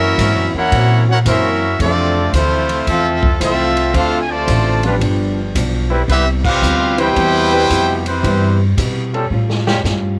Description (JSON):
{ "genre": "jazz, big band swing", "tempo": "112 BPM", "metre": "4/4", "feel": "swing 66% on 8ths", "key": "C major", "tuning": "A4 = 439 Hz", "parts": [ { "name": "brilliant trumpet section", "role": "melody", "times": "0.0-8.6 s", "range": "G3 to A5", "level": "-19 LUFS", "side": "equal", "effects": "cassette tape, plate reverb" }, { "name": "bright trombone section", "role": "second line", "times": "0.0-8.6 s", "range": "B2 to G4", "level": "-23 LUFS", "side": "equal", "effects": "cassette tape, plate reverb" }, { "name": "clear concert grand piano", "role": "accompaniment", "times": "0.0-8.6 s", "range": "C3 to E5", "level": "-27 LUFS", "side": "equal", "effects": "cassette tape, plate reverb" }, { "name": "vintage hollow-body jazz guitar", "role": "accompaniment", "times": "0.0-10.2 s", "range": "F2 to A4", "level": "-27 LUFS", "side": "equal", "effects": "cassette tape, plate reverb" }, { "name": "upright bass", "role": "bass", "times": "0.0-10.2 s", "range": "G1 to B2", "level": "-20 LUFS", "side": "equal", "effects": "none" }, { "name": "swinging big-band drum kit", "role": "drums", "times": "0.2-10.0 s", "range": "crash cymbal, hi-hat, kick drum, ride cymbal, snare drum", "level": "-25 LUFS", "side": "equal", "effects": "none" }, { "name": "bright trombone section", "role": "sustained chords", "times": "1.3-9.8 s", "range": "G3 to C5", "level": "-24 LUFS", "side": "equal", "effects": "cassette tape, plate reverb" } ], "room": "light reverb", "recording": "home recording on cassette", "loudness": "-15 LUFS", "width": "mono", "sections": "0.0-10.2 A section", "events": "band accent 6.4; drum fill 9.3-9.8", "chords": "0.0 F#7#11; 1.8 Fmaj7; 3.9 Dm7; 5.0 G7; 6.1 Cmaj7; 9.3 A7b13" }